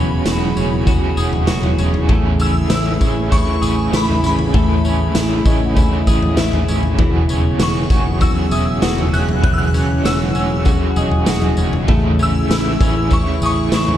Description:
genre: dream pop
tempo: 98 BPM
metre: 4/4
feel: straight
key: E major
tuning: A4 = 440 Hz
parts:
  - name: shimmering bell with halo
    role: melody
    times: 0.0-14.0 s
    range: B5 to F#6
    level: -25 LUFS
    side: left 2 dB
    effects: ensemble chorus, digital delay
  - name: crunchy overdriven guitar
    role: accompaniment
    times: 0.0-14.0 s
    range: E3 to G#4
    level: -24 LUFS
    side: right 3 dB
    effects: tremolo, wide subtle chorus
  - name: hollow soft pad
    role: sustained chords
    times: 0.0-14.0 s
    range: C#3 to G#4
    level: -22 LUFS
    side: equal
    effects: chorus
  - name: twelve-string electric guitar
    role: arpeggios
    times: 0.0-14.0 s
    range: E3 to G#4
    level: -23 LUFS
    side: left 3 dB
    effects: wide subtle chorus, digital delay
  - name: fingered electric bass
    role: bass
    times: 0.0-14.0 s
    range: E1 to A1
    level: -21 LUFS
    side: equal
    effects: none
  - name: celesta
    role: texture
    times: 0.0-0.1, 3.9-12.2 s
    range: C#5 to G#5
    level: -35 LUFS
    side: equal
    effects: none
  - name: raw garage drum kit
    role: drums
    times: 0.3-14.0 s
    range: kick drum, snare drum, tambourine, toms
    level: -17 LUFS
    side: equal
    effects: none
room: little or no reverb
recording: dark, warm production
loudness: -14 LUFS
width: side -11 dB against mid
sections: 0.0-14.0 A section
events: none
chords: 0.0 E69; 2.1 Amaj7; 7.0 E69; 11.9 Amaj7

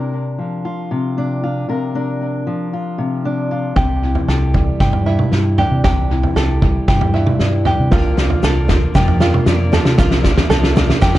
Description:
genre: indie folk with a building arrangement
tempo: 116 BPM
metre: 4/4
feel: straight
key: C mixolydian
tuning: A4 = 440 Hz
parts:
  - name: fingerpicked steel-string acoustic guitar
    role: accompaniment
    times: 0.0-7.9 s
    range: G2 to Bb4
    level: -20 LUFS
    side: left 2 dB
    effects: tape echo
  - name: open-back banjo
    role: arpeggios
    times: 3.8-11.2 s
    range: E4 to A4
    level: -22 LUFS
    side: right 2 dB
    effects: none
  - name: deep dub fingered electric bass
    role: bass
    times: 3.8-11.2 s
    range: C2 to C3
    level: -17 LUFS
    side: equal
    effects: none
  - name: loose indie drum kit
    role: drums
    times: 3.8-11.2 s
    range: kick drum, snare drum, toms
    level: -16 LUFS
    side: equal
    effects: tape echo
  - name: picked steel-string acoustic guitar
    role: accompaniment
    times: 7.9-11.2 s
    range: C3 to D5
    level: -23 LUFS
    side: left 2 dB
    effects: tape echo
  - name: mellow tonewheel organ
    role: sustained chords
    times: 7.9-11.2 s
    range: C3 to E5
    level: -26 LUFS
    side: right 2 dB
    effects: none
  - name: egg shaker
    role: percussion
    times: 7.9-11.1 s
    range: none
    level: -44 LUFS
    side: right 4 dB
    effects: none
room: light reverb, studio reverb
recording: echo-heavy mix, cassette tape, nothing above 10.8 kHz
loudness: -14 LUFS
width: side -15 dB against mid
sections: 0.0-3.8 A section; 3.8-11.2 B section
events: build-up 3.8-11.2; drum fill 3.8-11.2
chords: 0.0 Bbadd9/C; 3.8 Cadd9; 7.9 Bbadd9/C

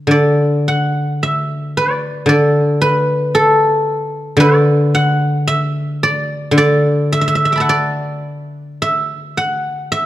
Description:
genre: chinese traditional, Chinese solo plucked strings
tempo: 52-57 BPM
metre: 2/4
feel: rubato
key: D gong mode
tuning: A4 = 439 Hz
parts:
  - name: guzheng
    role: solo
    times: 0.0-10.1 s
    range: D3 to D6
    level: -13 LUFS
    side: equal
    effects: none
room: moderate recital hall reverb, RT60 1.7 s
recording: dark, warm production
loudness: -13 LUFS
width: side -14 dB against mid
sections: 0.1-10.1 A section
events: none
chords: none

